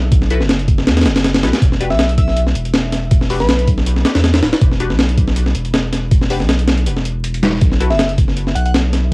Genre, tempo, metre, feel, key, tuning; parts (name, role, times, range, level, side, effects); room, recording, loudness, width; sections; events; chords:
drum and bass, jungle; 160 BPM; 4/4; swing 54% on 16ths; E minor; A4 = 440 Hz
saturated sub bass; bass; 0.0-9.1 s; D1 to E2; -17 LUFS; equal; tube saturation
breakbeat sampler-style drum kit; drums; 0.1-9.0 s; hi-hat, kick drum, snare drum; -14 LUFS; equal; cassette tape
filtered dub chord stab; stabs; 0.3-8.0 s; D4 to B4; -25 LUFS; left 4 dB; phaser, cassette tape, dub echo
soft struck synth lead; melody; 1.9-3.7, 7.9-8.7 s; B4 to F#5; -22 LUFS; equal; chorus, dub echo
little or no reverb; home recording on cassette, vinyl crackle; -12 LUFS; side -27 dB against mid
0.0-1.6 A section; 1.6-9.1 A section
drop 0.0-1.6, 1.6-9.1
0.0 B7sus4; 1.6 Em7; 7.6 B7sus4